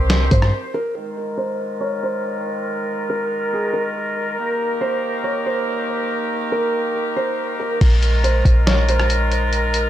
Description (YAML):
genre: hip hop, atmospheric cloud-rap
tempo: 140 BPM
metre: 4/4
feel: half-time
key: unclear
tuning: A4 = 440 Hz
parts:
  - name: felt-muted upright piano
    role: melody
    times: 0.0-9.5 s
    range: Ab4 to Db5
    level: -24 LUFS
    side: right 1 dB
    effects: low-pass filter, digital delay
  - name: warm woodwind section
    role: sustained chords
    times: 0.0-9.9 s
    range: Eb3 to C5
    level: -22 LUFS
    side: equal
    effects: sidechain pumping, low-pass filter
  - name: clean 808-style bass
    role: bass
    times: 0.0-0.5, 7.8-9.9 s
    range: Bb1 to G2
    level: -17 LUFS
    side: equal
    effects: none
  - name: lo-fi sampler-style drum kit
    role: drums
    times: 0.1-0.5, 7.8-9.8 s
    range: crash cymbal, hi-hat, kick drum, rim click, snare drum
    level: -18 LUFS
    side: equal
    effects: vintage 12-bit sampler grit
room: light reverb, digital ambience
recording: none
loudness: -18 LUFS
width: side -12 dB against mid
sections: 1.0-7.8 A section; 7.8-9.9 B section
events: break 0.5-1.0; filter sweep 1.0-7.8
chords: 0.0 Cm; 1.0 Bb7sus4; 4.4 Eb; 7.8 Bb7sus4